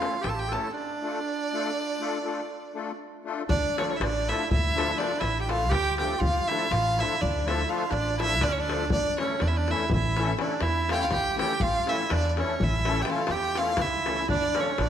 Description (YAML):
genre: balkan folk, Balkan wedding band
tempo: 244 BPM (eighths)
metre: 11/8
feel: straight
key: D harmonic minor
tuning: A4 = 440 Hz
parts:
  - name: rich violin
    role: melody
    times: 0.0-14.9 s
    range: C#5 to A5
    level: -28 LUFS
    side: right 1 dB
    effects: none
  - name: bright clarinet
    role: second line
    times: 0.0-14.9 s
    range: C#4 to A4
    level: -32 LUFS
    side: right 5 dB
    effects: none
  - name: musette accordion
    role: accompaniment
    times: 0.0-14.7 s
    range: E3 to A4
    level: -33 LUFS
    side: left 5 dB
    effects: none
  - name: davul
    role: percussion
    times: 0.0-14.9 s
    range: none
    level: -32 LUFS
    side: left 3 dB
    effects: none
  - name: upright bass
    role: bass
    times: 0.2-14.9 s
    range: A1 to E2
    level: -29 LUFS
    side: equal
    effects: none
room: moderate concert hall reverb, RT60 1.9 s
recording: none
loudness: -24 LUFS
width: side -9 dB against mid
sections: 0.0-3.5 A section; 3.5-14.9 B section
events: break 0.7-3.5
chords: 0.0 A; 0.7 Dm; 8.9 A; 14.3 Dm